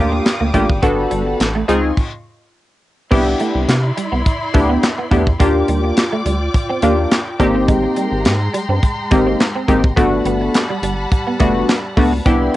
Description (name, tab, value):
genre	early-eighties boogie funk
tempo	105 BPM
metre	4/4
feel	straight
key	C lydian from 3.1 s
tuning	A4 = 436 Hz
part	funky polysynth comp	accompaniment	0.0-12.6 s	A3 to A4	-16 LUFS	left 1 dB	chorus, cassette tape
part	warm studio string section	sustained chords	0.0-12.6 s	G3 to Eb6	-25 LUFS	equal	cassette tape
part	semi-hollow electric guitar	riff	0.0-12.6 s	G3 to D4	-23 LUFS	right 3 dB	ensemble chorus, cassette tape
part	rubbery square bass	bass	0.0-12.5 s	F#1 to C3	-20 LUFS	equal	none
part	tight funk drum kit	drums	0.3-12.6 s	crash cymbal, handclaps, hi-hat, kick drum, snare drum	-17 LUFS	equal	cassette tape
room	light reverb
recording	home recording on cassette, nothing above 11.0 kHz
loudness	-14 LUFS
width	side -15 dB against mid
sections	0.0-3.1 A section; 3.1-12.6 B section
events	stop 2.0-3.1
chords	0.0 Ebmaj9; 0.8 Gmaj9; 1.7 Dbmaj9; 2.0 N.C.; 3.1 Cmaj9; 5.4 Ebmaj9; 7.4 Abmaj9; 10.0 Gmaj9